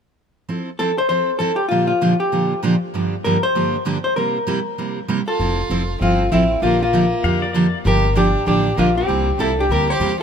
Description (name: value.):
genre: country, western swing.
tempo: 196 BPM.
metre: 4/4.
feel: swing 62% on 8ths.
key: F major.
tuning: A4 = 442 Hz.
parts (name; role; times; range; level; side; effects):
picked steel-string acoustic guitar; accompaniment; 0.5-10.1 s; G2 to A4; -20 LUFS; right 2 dB; none.
vintage hollow-body jazz guitar; melody; 0.8-10.2 s; E4 to C5; -20 LUFS; left 2 dB; none.
clear fiddle; second line; 5.3-10.2 s; Bb3 to G4; -25 LUFS; right 3 dB; none.
upright bass; bass; 5.4-10.2 s; F1 to F2; -22 LUFS; equal; none.
pedal steel guitar; second line; 7.2-7.8 s; D5 to F5; -29 LUFS; left 6 dB; none.
room: light reverb.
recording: none.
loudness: -16 LUFS.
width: side -7 dB against mid.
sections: 0.5-5.4 A section; 5.4-10.2 B section.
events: none.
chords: 0.5 Fmaj7; 1.7 Bb6; 2.9 Gm7; 4.2 C7; 5.4 Fmaj7; 6.6 Bb6; 7.8 Gm7; 9.1 C7.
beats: | 0.48 0.79 1.09 1.40 | 1.71 2.02 2.32 2.63 | 2.94 3.24 3.55 3.86 | 4.16 4.47 4.78 5.08 | 5.39 5.70 6.00 6.31 | 6.62 6.93 7.23 7.54 | 7.85 8.15 8.46 8.77 | 9.08 9.38 9.69 10.00.